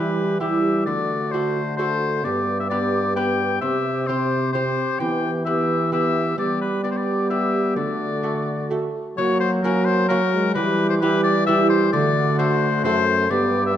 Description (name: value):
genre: classical, renaissance-style consort dance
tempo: 130 BPM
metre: 3/4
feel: straight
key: D mixolydian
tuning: A4 = 440 Hz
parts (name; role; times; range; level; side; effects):
- clear oboe; melody; 0.0-13.8 s; A#4 to G5; -23 LUFS; left 5 dB; none
- mellow alto recorder; second line; 0.0-13.8 s; F#4 to G4; -27 LUFS; right 4 dB; none
- clear trombone; accompaniment; 0.0-13.8 s; G3 to C4; -26 LUFS; left 2 dB; none
- lute; accompaniment; 0.0-13.8 s; F#2 to C5; -27 LUFS; right 5 dB; none
- clear trombone; bass; 0.0-13.8 s; F#2 to G3; -25 LUFS; right 1 dB; none
room: wet recital hall reverb, RT60 1.5 s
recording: dark, warm production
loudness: -18 LUFS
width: side -10 dB against mid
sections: 0.0-9.2 A section; 9.2-13.8 A section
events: none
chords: 0.0 Em; 0.9 D; 2.2 G; 3.6 C; 5.0 Em; 6.4 G; 7.8 D; 9.2 F#; 10.6 Em; 11.9 D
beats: 0.40 | 0.86 1.32 1.78 | 2.25 2.70 3.16 | 3.62 4.08 4.54 | 5.00 5.46 5.92 | 6.37 6.83 7.30 | 7.76 8.23 8.71 | 9.17 9.63 10.09 | 10.56 11.02 11.47 | 11.93 12.39 12.84 | 13.30 13.76